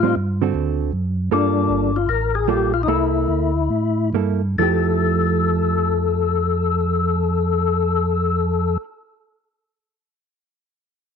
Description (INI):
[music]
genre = jazz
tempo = 132-156 BPM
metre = 4/4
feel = swing 66% on 8ths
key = F major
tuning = A4 = 436 Hz
[part]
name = percussive tonewheel organ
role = melody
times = 0.0-8.8 s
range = D4 to Bb4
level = -20 LUFS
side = left 10 dB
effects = slow rotary speaker, overdrive, chorus vibrato
[part]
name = hollow-body jazz guitar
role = accompaniment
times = 0.0-8.8 s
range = D3 to A4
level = -23 LUFS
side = right 15 dB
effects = none
[part]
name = mellow tonewheel organ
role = bass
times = 0.0-8.8 s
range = G1 to A2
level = -21 LUFS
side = right 2 dB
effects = chorus vibrato, slow rotary speaker
[sound]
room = light reverb, digital ambience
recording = 1960s-style stereo with parts hard left and right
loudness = -17 LUFS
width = side -6 dB against mid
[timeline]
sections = 0.0-1.3 A section; 1.3-4.6 B section; 4.6-8.2 C section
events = slowing down 1.3-4.6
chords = 0.0 Am7b5; 0.5 D7; 1.3 Gm9; 2.9 C13; 4.6 Fmaj9